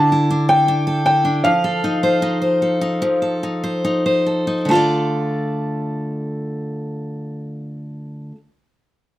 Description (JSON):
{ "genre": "pop", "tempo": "69-80 BPM", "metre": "4/4", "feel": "straight", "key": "D minor", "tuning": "A4 = 440 Hz", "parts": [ { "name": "bright upright piano", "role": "melody", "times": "0.0-8.3 s", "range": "F5 to A5", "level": "-19 LUFS", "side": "equal", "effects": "slapback echo" }, { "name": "picked steel-string acoustic guitar", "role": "accompaniment", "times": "0.0-8.4 s", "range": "D3 to D5", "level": "-19 LUFS", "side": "equal", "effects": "slapback echo" } ], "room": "little or no reverb", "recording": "recorded outdoors, with no room sound", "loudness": "-16 LUFS", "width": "side -15 dB against mid", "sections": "0.0-4.7 A section; 4.7-8.1 B section", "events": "slowing down 0.0-4.7", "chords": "0.0 Dsus2; 1.4 F7; 4.7 Dm" }